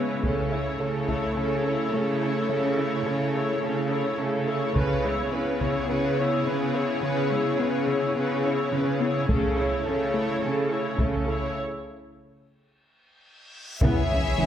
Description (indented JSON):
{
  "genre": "cinematic, hybrid orchestral and electronic film score",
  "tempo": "106 BPM",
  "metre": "4/4",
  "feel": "straight",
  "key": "unclear",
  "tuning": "A4 = 440 Hz",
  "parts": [
    { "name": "rich symphonic viola section", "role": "accompaniment", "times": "0.0-14.5 s", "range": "B3 to C#5", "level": "-30 LUFS", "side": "right 1 dB", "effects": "none" },
    { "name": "airy breathy pad", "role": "sustained chords", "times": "0.0-14.5 s", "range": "G#3 to C#5", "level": "-28 LUFS", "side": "left 2 dB", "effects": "chorus" },
    { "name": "tight sequenced synth", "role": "arpeggios", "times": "0.0-14.5 s", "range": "C#3 to A4", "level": "-33 LUFS", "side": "left 1 dB", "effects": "chorus, phaser" },
    { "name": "rich symphonic cello section", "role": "bass", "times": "0.0-14.5 s", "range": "C#3", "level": "-28 LUFS", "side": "right 2 dB", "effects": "none" },
    { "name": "solo taiko drums", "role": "drums", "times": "0.2-1.3, 4.8-5.9, 9.3-14.3 s", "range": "none", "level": "-29 LUFS", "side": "equal", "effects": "none" },
    { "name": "reverse cymbal and sub drop", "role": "sound effects", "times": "13.5-14.5 s", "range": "none", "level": "-31 LUFS", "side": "equal", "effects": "none" },
    { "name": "rich symphonic violin section", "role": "melody", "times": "13.8-14.5 s", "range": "E5", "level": "-29 LUFS", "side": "left 3 dB", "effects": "none" },
    { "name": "rich symphonic violin section", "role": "second line", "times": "13.8-14.5 s", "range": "G#4 to C#5", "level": "-31 LUFS", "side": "left 2 dB", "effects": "none" },
    { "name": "dark French horn section", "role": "sustained chords", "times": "13.8-14.0 s", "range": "B3 to E4", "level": "-31 LUFS", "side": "left 2 dB", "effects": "none" },
    { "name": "warm symphonic double bass section", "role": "bass", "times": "13.8-14.5 s", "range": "C#2", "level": "-30 LUFS", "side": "right 2 dB", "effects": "none" }
  ],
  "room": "wet recital hall reverb, RT60 1.4 s",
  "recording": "recorded in a church or concert hall",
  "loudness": "-23 LUFS",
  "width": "side -10 dB against mid",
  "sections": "0.0-13.8 A section",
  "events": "build-up 0.0-13.8; break 11.6-13.8; drum fill 13.0-13.8; reverse cymbal 13.5-13.8; impact 13.8-14.5",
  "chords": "0.2 A/C#; 4.8 C#m7; 9.3 A/C#; 13.8 C#m7"
}